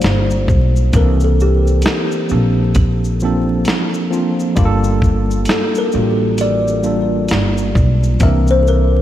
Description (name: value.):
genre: lo-fi hip hop.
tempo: 66 BPM.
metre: 4/4.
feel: swing 61% on 16ths.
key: G minor.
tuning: A4 = 440 Hz.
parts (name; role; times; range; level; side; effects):
kalimba; melody; 0.0-9.0 s; G4 to E5; -21 LUFS; left 3 dB; ping-pong delay.
tine electric piano; accompaniment; 0.0-9.0 s; E3 to Bb4; -18 LUFS; right 1 dB; medium stereo tremolo.
upright bass; bass; 0.0-9.0 s; G1 to C2; -15 LUFS; equal; none.
dusty soul sampler-style drum kit; drums; 0.0-8.9 s; hi-hat, kick drum, shaker, snare drum; -18 LUFS; equal; none.
room: light reverb.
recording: vinyl crackle.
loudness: -12 LUFS.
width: side -12 dB against mid.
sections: 0.0-9.0 A section.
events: none.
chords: 0.0 Gm9; 0.9 C13; 2.3 Bbmaj9; 4.6 Gm9; 8.2 C9.